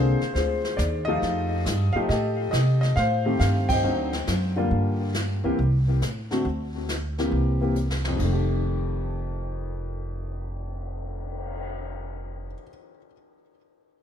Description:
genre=jazz piano trio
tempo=138 BPM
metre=4/4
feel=swing 67% on 8ths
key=F mixolydian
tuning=A4 = 442 Hz
part: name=warm concert grand piano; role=melody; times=0.0-12.7 s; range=F2 to G5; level=-27 LUFS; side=left 2 dB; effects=wide subtle chorus, ping-pong delay
part: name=upright bass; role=bass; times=0.0-12.5 s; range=F1 to C3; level=-26 LUFS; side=right 1 dB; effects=none
part: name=jazz brush drum kit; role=drums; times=0.2-11.6 s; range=brushed snare drum, crash cymbal, cymbal swell, hi-hat, kick drum, snare drum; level=-34 LUFS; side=left 1 dB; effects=none
room=light reverb, small room ambience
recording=none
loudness=-23 LUFS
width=side -8 dB against mid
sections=0.0-4.7 A section; 4.7-8.2 B section; 8.2-11.7 C section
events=band accent 3.6; drum fill 7.8-8.2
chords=0.0 Bb9 (rootless); 1.2 F9; 3.0 Am7b5; 3.8 D7b9; 4.7 Gm7; 5.6 D7(no3)/C (rootless); 6.5 N.C.; 7.3 C7; 8.2 F9

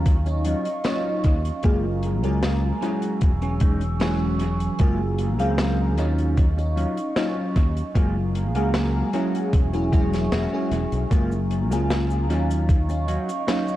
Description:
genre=vaporwave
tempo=76 BPM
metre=4/4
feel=straight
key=unclear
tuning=A4 = 440 Hz
part: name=FM electric piano with soft pad layer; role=accompaniment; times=0.0-13.8 s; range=E3 to F5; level=-27 LUFS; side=equal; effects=phaser, analog chorus, cassette tape, dub echo
part: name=warbly tape-like pad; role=sustained chords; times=0.0-13.8 s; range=Eb5 to E6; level=-32 LUFS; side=right 1 dB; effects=chorus, built-in reverb, vintage 12-bit sampler grit
part: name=mellow electric guitar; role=riff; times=0.0-13.8 s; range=Gb3 to F#4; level=-29 LUFS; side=left 1 dB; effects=analog chorus, low-pass filter, dub echo
part: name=sustaining fretless electric bass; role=bass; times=0.0-13.2 s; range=E1 to Eb2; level=-24 LUFS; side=equal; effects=none
part: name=big rock drum kit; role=drums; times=0.1-13.8 s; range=cabasa, hi-hat, snare drum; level=-31 LUFS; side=left 1 dB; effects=dub echo
part: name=electronic kick drum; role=drums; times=0.1-12.9 s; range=none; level=-19 LUFS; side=equal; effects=none
room=light reverb, studio reverb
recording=echo-heavy mix, cassette tape, faint mains hum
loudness=-20 LUFS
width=side -14 dB against mid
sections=0.0-13.8 A section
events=filter sweep on clean electric guitar 0.0-13.8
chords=0.0 Ebm9; 1.6 Gbmaj9; 2.8 E69; 4.8 Gbmaj9; 6.0 Ebm9; 8.0 Gbmaj9; 9.1 E69; 11.1 Gbmaj9; 12.3 Ebm9

